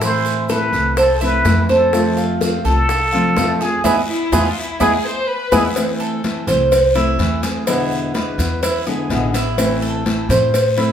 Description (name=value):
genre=latin, Cuban son and guajira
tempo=126 BPM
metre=4/4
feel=straight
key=A harmonic minor from 5.8 s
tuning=A4 = 441 Hz
part: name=trumpet with plunger mute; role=melody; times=0.0-5.6 s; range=G#4 to C5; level=-20 LUFS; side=equal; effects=none
part: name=nylon-string guitar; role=accompaniment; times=0.0-10.9 s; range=B2 to F4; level=-21 LUFS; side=left 1 dB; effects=none
part: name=Cuban tres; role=arpeggios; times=0.0-10.9 s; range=E4 to F5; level=-20 LUFS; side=right 2 dB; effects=none
part: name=upright bass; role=bass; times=0.0-10.9 s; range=A1 to A2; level=-22 LUFS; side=equal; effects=none
part: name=bongos and cowbell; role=percussion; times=0.0-10.9 s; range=none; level=-25 LUFS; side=left 2 dB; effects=none
part: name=congas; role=percussion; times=0.0-10.9 s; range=none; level=-27 LUFS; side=left 1 dB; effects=none
part: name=guiro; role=percussion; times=0.0-10.9 s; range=none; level=-33 LUFS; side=left 3 dB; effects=none
part: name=maracas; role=percussion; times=0.0-10.9 s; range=none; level=-32 LUFS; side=right 5 dB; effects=none
part: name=warm chamber violin section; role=second line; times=4.1-5.8 s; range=E4 to C5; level=-22 LUFS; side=left 2 dB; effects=none
room=moderate large studio reverb, RT60 0.9 s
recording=band playing live in one room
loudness=-14 LUFS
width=side -9 dB against mid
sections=0.0-5.8 A section; 5.8-10.9 B section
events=band accent 3.8-5.8; drum fill 5.0-5.8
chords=0.0 Am; 1.9 F; 3.8 E; 5.8 Am; 7.7 E7; 9.6 Am